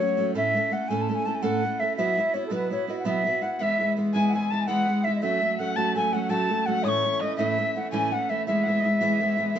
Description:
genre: celtic folk, Celtic slip jig.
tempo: 111 BPM (dotted quarters).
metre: 9/8.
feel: straight.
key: E major.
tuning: A4 = 440 Hz.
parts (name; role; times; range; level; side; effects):
wooden flute; melody; 0.0-9.6 s; A4 to A5; -26 LUFS; left 1 dB; none.
picked steel-string acoustic guitar; accompaniment; 0.0-9.6 s; A2 to B4; -26 LUFS; right 1 dB; none.
bright wooden whistle; second line; 3.6-9.6 s; D#5 to D#6; -32 LUFS; left 3 dB; none.
room: moderate studio reverb, RT60 0.7 s.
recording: band playing live in one room, nothing above 7.8 kHz.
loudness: -22 LUFS.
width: side -9 dB against mid.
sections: 0.0-9.6 A section.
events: none.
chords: 0.3 A; 2.0 Bsus4; 3.6 E; 5.2 F#m; 6.8 A; 8.5 E.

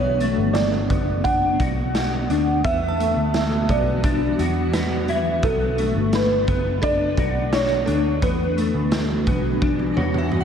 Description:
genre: dream pop.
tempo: 86 BPM.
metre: 4/4.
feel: straight.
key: B minor.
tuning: A4 = 445 Hz.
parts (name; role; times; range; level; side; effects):
felt-muted upright piano; melody; 0.0-10.3 s; A4 to F#5; -24 LUFS; right 2 dB; analog chorus, ping-pong delay.
granular cloud pad; sustained chords; 0.0-10.4 s; E3 to F#4; -26 LUFS; right 1 dB; built-in reverb.
mellow electric guitar; arpeggios; 0.0-10.4 s; A3 to F#4; -25 LUFS; left 4 dB; ensemble chorus, ping-pong delay.
vintage muted picked electric bass; bass; 0.0-10.4 s; F#1 to E2; -25 LUFS; equal; none.
glassy synth bell; texture; 0.0-10.4 s; A4 to A5; -36 LUFS; right 2 dB; chorus, phaser, ping-pong delay.
raw garage drum kit; drums; 0.2-10.4 s; hi-hat, kick drum, snare drum, toms; -26 LUFS; equal; none.
room: moderate plate reverb, RT60 3.0 s.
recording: dreamy mix soaked in reverb.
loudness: -18 LUFS.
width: side -7 dB against mid.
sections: 0.0-10.4 A section.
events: drum fill 9.6-10.4.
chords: 0.0 Bm7; 2.6 Em7; 5.4 Bm7; 8.2 Em7.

